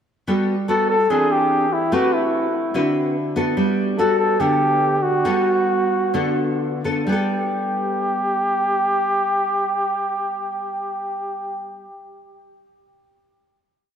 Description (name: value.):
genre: bossa nova.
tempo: 123-146 BPM.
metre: 4/4.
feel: straight.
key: G major.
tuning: A4 = 441 Hz.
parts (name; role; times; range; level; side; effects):
nylon-string guitar; accompaniment; 0.3-11.9 s; D3 to B4; -22 LUFS; equal; lush chorus.
warm flugelhorn; melody; 0.7-11.7 s; E4 to A4; -20 LUFS; equal; analog delay.
room: wet plate reverb, RT60 2.8 s.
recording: dreamy mix soaked in reverb.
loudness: -18 LUFS.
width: side -8 dB against mid.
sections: 0.3-7.1 A section; 7.1-11.0 final chord.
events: slowing down 3.6-7.1.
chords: 0.3 Gmaj9; 1.1 E7alt; 1.9 Am9; 2.7 D6; 3.6 Gmaj9; 7.1 Gadd9.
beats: | 0.27 0.69 1.10 1.51 | 1.92 2.33 2.74 3.15 | 3.57 3.98 4.40 4.82 | 5.25 5.69 6.14 6.61 | 7.08 7.57 8.06 8.54 | 9.03 9.51 10.00 10.48.